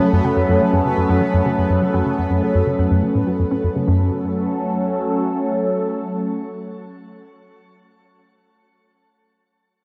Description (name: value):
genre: ambient, sequencer-driven space music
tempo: 124 BPM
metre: 4/4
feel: straight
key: F# minor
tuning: A4 = 440 Hz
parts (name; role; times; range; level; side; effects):
- phased analog pad; sustained chords; 0.0-7.8 s; F#3 to A4; -21 LUFS; equal; phaser, chorus, tremolo, shimmer reverb
- plucky analog bass; riff; 0.0-4.1 s; F#2 to C#4; -22 LUFS; equal; subtle chorus, tape echo
- bubbling stepped-filter texture; texture; 0.0-3.9 s; B3 to B4; -33 LUFS; equal; chorus, built-in reverb, shimmer reverb
- warbly dusty pluck; arpeggios; 0.1-4.1 s; C#4 to F#5; -36 LUFS; equal; none
room: wet lush hall reverb, RT60 2.7 s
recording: none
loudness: -19 LUFS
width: mono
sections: 0.0-3.9 A section; 3.9-7.7 B section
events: filter sweep on analog synth bass 0.0-3.9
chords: 0.0 F#m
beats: | 0.01 0.49 0.97 1.46 | 1.94 2.42 2.91 3.39 | 3.88 4.36 4.84 5.33 | 5.81 6.30 6.78 7.26